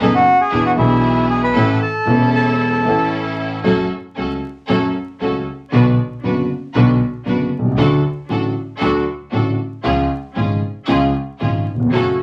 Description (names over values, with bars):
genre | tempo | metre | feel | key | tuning
tango | 116 BPM | 4/4 | rubato | A major, F# minor from 3.6 s | A4 = 436 Hz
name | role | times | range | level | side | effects
bandoneon | melody | 0.0-3.1 s | E4 to B5 | -19 LUFS | equal | none
dark concert grand piano | accompaniment | 0.0-12.2 s | E1 to A4 | -19 LUFS | equal | none
clear studio string section | stabs | 0.0-12.2 s | B3 to B4 | -26 LUFS | equal | none
upright bass | bass | 0.0-12.2 s | E1 to E2 | -28 LUFS | equal | none
room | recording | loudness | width
wet studio ambience, RT60 0.5 s | vinyl crackle | -17 LUFS | mono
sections
0.0-3.6 A section; 3.6-12.2 B section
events
none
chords
0.0 B7; 0.5 E7; 1.6 A; 3.6 F#m; 5.7 Bm; 7.8 D; 9.8 C#